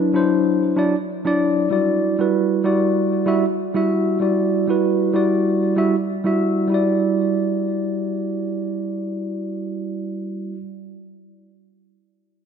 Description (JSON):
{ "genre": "chillout", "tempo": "96 BPM", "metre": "4/4", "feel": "swing 55% on 16ths", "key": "E minor", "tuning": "A4 = 436 Hz", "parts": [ { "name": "tine electric piano", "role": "accompaniment", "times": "0.0-10.6 s", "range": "F#3 to E5", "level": "-18 LUFS", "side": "moving between left 2 dB and right 5 dB", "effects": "auto-pan, low-pass filter, digital delay" } ], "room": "wet lush hall reverb, RT60 2.6 s", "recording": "none", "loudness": "-18 LUFS", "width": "side -7 dB against mid", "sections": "0.0-6.7 A section; 6.7-9.2 B section", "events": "filter sweep on tine electric piano 0.0-6.7", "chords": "0.0 D9; 1.7 Em9" }